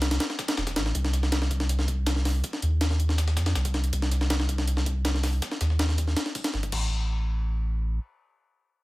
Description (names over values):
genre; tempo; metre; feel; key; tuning
drum and bass, jungle; 161 BPM; 4/4; straight; unclear; A4 = 440 Hz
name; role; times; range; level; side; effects
soft dub sub bass; bass; 0.0-8.0 s; E1 to F2; -25 LUFS; equal; none
breakbeat sampler-style drum kit; drums; 0.0-6.8 s; crash cymbal, hi-hat, kick drum, snare drum; -29 LUFS; equal; high-pass filter on snare, studio reverb, high-pass filter on hats, high-pass filter on kick, high-pass filter on cymbals
breakbeat sampler-style drum kit; drums; 0.0-6.4 s; hi-hat, snare drum; -37 LUFS; left 3 dB; high-pass filter on snare, studio reverb, high-pass filter on hats, high-pass filter on room
room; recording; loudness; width
little or no reverb; none; -24 LUFS; side -19 dB against mid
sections
0.0-6.9 A section; 6.9-8.8 B section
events
none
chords
none